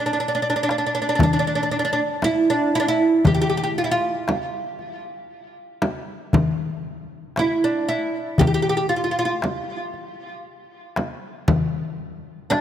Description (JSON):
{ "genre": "Arabic maqam ensemble", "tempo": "117 BPM (eighths)", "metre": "10/8", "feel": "straight", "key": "unclear", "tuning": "A4 = 439 Hz", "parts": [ { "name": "oud", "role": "melody", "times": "0.0-12.6 s", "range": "D4 to G4", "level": "-21 LUFS", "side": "right 2 dB", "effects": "diffuse ambient delay" }, { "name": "darbuka", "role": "percussion", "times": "0.2-12.6 s", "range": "none", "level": "-23 LUFS", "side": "left 4 dB", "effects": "none" }, { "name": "frame drum", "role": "percussion", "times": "1.2-12.6 s", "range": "none", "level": "-25 LUFS", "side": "right 1 dB", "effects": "none" } ], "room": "moderate plate reverb, RT60 2.4 s", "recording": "dreamy mix soaked in reverb", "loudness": "-19 LUFS", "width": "side -10 dB against mid", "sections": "0.0-12.6 A section", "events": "none", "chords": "none" }